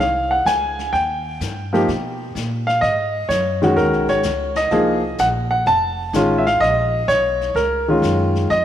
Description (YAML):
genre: jazz piano trio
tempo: 127 BPM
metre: 4/4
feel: swing 67% on 8ths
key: unclear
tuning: A4 = 440 Hz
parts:
  - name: warm grand piano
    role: melody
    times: 0.0-8.6 s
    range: Eb3 to A5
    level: -17 LUFS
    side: equal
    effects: none
  - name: upright bass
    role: bass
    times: 0.0-8.6 s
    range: F1 to Cb3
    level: -25 LUFS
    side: equal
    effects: none
  - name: jazz brush drum kit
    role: drums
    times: 0.0-8.6 s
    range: brushed snare drum, hi-hat, snare drum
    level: -33 LUFS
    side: left 8 dB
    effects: none
room: moderate plate reverb, RT60 2.9 s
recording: 1960s-style stereo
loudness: -16 LUFS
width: side -10 dB against mid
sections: 0.0-8.6 A section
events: none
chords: 0.0 Dbmaj7; 0.9 Eb; 2.8 Ab7(no3); 4.7 Ab13; 5.7 F7alt; 6.6 Bbm7